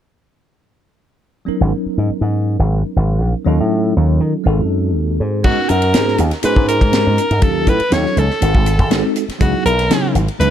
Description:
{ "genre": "electric jazz fusion", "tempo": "121 BPM", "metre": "4/4", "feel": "straight", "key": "G# minor", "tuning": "A4 = 440 Hz", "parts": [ { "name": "bell-like tine electric piano", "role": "accompaniment", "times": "1.5-10.5 s", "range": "F#3 to B4", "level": "-20 LUFS", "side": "equal", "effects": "medium stereo tremolo" }, { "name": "slap bass with an envelope filter", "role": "bass", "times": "1.5-10.5 s", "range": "G#1 to D#3", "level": "-16 LUFS", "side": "equal", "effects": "none" }, { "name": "edgy soprano saxophone", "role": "melody", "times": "5.4-10.5 s", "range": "F#4 to C#5", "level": "-18 LUFS", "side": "right 1 dB", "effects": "none" }, { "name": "tight funk drum kit", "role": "drums", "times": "5.4-10.5 s", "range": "crash cymbal, hi-hat, kick drum, ride cymbal, snare drum", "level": "-18 LUFS", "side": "equal", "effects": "none" } ], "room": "little or no reverb", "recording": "dark, warm production", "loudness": "-13 LUFS", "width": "side -10 dB against mid", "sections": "1.5-5.4 A section; 5.4-10.5 B section", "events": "none", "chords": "1.5 G#m11; 3.5 D#m7b5; 4.5 G#7b9; 5.4 G#m11; 7.4 D#m7b5; 8.4 G#7b9; 9.4 C#m11", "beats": "| 1.47 1.97 2.47 2.97 | 3.46 3.96 4.46 4.95 | 5.45 5.95 6.44 6.94 | 7.43 7.93 8.42 8.92 | 9.41 9.91 10.40" }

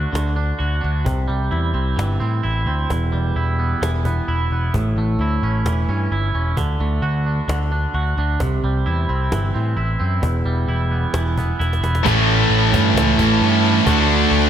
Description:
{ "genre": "quiet-loud alternative rock", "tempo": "131 BPM", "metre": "4/4", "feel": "straight", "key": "unclear", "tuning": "A4 = 440 Hz", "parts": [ { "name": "twangy electric guitar", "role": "arpeggios", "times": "0.0-12.1 s", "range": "E2 to F#4", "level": "-23 LUFS", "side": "right 3 dB", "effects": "lush chorus" }, { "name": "overdriven picked electric bass", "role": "bass", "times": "0.0-14.5 s", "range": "E1 to A2", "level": "-20 LUFS", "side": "equal", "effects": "none" }, { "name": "cajon", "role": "drums", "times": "0.2-14.4 s", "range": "none", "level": "-26 LUFS", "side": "equal", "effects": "none" }, { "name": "dark studio string section", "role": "sustained chords", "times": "12.0-14.5 s", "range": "E4 to A5", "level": "-26 LUFS", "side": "left 2 dB", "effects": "none" }, { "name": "heavy high-gain guitar", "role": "riff", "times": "12.0-14.5 s", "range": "A2 to D4", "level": "-19 LUFS", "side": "left 11 dB", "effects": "distortion" }, { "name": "thick fuzz guitar", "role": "riff", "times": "12.1-14.5 s", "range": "A2 to D4", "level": "-18 LUFS", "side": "right 10 dB", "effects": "distortion" }, { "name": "tight distorted guitar", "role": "riff", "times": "12.1-14.5 s", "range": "A2 to F#4", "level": "-20 LUFS", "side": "equal", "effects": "distortion" } ], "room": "light reverb, digital ambience", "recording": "none", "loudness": "-17 LUFS", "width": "side -10 dB against mid", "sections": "0.0-12.0 A section; 12.0-14.5 B section", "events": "drum fill 11.6-12.0", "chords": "0.0 D; 1.1 C; 2.9 Em; 4.7 A; 6.6 D; 8.4 C; 10.2 Em; 12.0 A; 13.9 D", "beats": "0.14 0.60 | 1.06 1.52 1.98 2.44 | 2.89 3.35 3.81 4.27 | 4.73 5.19 5.64 6.10 | 6.56 7.02 7.47 7.93 | 8.39 8.85 9.30 9.76 | 10.22 10.68 11.13 11.59 | 12.04 12.50 12.95 13.41 | 13.86 14.32" }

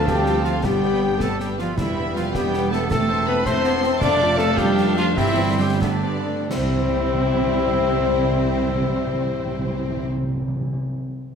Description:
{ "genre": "cinematic, heroic adventure film score", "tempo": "85-108 BPM (dotted quarters)", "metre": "6/8", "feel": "straight", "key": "C major", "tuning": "A4 = 440 Hz", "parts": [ { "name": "warm symphonic violin section", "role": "melody", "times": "0.0-10.1 s", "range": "C5 to D6", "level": "-33 LUFS", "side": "left 2 dB", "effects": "none" }, { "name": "concert flute", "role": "second line", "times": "0.0-10.1 s", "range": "G5 to C6", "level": "-34 LUFS", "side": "equal", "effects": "none" }, { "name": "mellow clarinet", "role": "second line", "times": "0.0-10.1 s", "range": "G3 to D4", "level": "-31 LUFS", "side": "left 3 dB", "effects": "none" }, { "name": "mellow cor anglais", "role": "second line", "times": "0.0-10.1 s", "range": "E5 to A5", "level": "-34 LUFS", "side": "right 1 dB", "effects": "none" }, { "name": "warm symphonic violin section", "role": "second line", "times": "0.0-10.1 s", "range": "E4 to C6", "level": "-35 LUFS", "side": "left 2 dB", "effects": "none" }, { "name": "warm symphonic viola section", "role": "accompaniment", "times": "0.0-10.1 s", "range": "F3 to C5", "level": "-31 LUFS", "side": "right 1 dB", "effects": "none" }, { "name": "bright trombone section", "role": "sustained chords", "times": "0.0-10.1 s", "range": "E3 to E4", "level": "-31 LUFS", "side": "right 3 dB", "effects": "none" }, { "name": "mellow French horn section", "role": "sustained chords", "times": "0.0-10.1 s", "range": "D4 to D5", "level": "-24 LUFS", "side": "left 8 dB", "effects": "none" }, { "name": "rich symphonic double bass section", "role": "bass", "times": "0.0-10.1 s", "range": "E1 to D2", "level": "-27 LUFS", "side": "right 4 dB", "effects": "none" }, { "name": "warm symphonic cello section", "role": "bass", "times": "0.0-10.1 s", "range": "D3 to D4", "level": "-26 LUFS", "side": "right 4 dB", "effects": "none" }, { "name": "mellow trumpet", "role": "stabs", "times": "0.1-10.1 s", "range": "D4 to D5", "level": "-28 LUFS", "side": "right 1 dB", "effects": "none" }, { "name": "concert snare drum, concert bass drum and clash cymbals", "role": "drums", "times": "0.1-6.6 s", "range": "none", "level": "-29 LUFS", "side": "equal", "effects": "none" }, { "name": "timpani", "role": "percussion", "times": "5.2-10.8 s", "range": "G2 to C3", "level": "-26 LUFS", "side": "equal", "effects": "none" } ], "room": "wet scoring stage reverb, RT60 2.1 s", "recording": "none", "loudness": "-18 LUFS", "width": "side -7 dB against mid", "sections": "0.0-6.5 A section; 6.5-9.3 B section", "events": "slowing down 3.5-6.5", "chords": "0.0 Dm; 0.7 G; 1.8 Em; 2.9 Am/E; 4.0 Dm/F; 5.2 C/G; 5.8 Gadd9; 6.5 C", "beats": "0.09 | 0.65 1.22 | 1.78 2.35 | 2.90 3.46 | 4.01 4.58 | 5.17 5.81 | 6.50 7.20 | 7.90 8.60" }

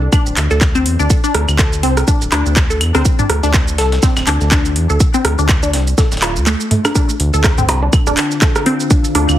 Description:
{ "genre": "minimal techno", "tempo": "123 BPM", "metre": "4/4", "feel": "swing 57% on 16ths", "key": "D minor", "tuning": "A4 = 439 Hz", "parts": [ { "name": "round analog bass", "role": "bass", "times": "0.0-9.4 s", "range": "D1 to E2", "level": "-16 LUFS", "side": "equal", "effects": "sidechain pumping" }, { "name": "resonant blip pluck", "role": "riff", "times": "0.1-9.2 s", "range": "A3 to A4", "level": "-18 LUFS", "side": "left 1 dB", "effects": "phaser, vintage 12-bit sampler grit, sidechain pumping, digital delay" }, { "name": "dusty soul sampler-style drum kit", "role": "drums", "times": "0.1-9.3 s", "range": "hi-hat, snare drum", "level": "-30 LUFS", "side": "left 1 dB", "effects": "none" }, { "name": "electronic kick drum", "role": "drums", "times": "0.1-9.0 s", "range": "none", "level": "-13 LUFS", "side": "equal", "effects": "none" }, { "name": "house drum kit", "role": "drums", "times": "0.1-9.4 s", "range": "handclaps, hi-hat, shaker", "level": "-20 LUFS", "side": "right 1 dB", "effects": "none" }, { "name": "minimal click drum kit", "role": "percussion", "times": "0.1-9.4 s", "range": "claves, percussion blips, rim click, toms", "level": "-19 LUFS", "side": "right 2 dB", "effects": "none" }, { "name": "deep dark ambient pad", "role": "texture", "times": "7.7-9.4 s", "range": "D4 to F5", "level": "-22 LUFS", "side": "left 1 dB", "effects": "chorus, built-in reverb, sidechain pumping" } ], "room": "light reverb, digital ambience", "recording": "heavily compressed radio sound, multiband compression", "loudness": "-12 LUFS", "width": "side -12 dB against mid", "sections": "0.0-7.0 A section; 7.0-9.4 B section", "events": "kick drops out 6.5-7.0; drop 7.0-9.4", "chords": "0.0 D7(no3); 7.0 Dm7", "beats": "0.13 0.61 | 1.10 1.59 2.08 2.56 | 3.05 3.54 4.03 4.52 | 5.00 5.49 5.98 6.47 | 6.96 7.44 7.93 8.42 | 8.91" }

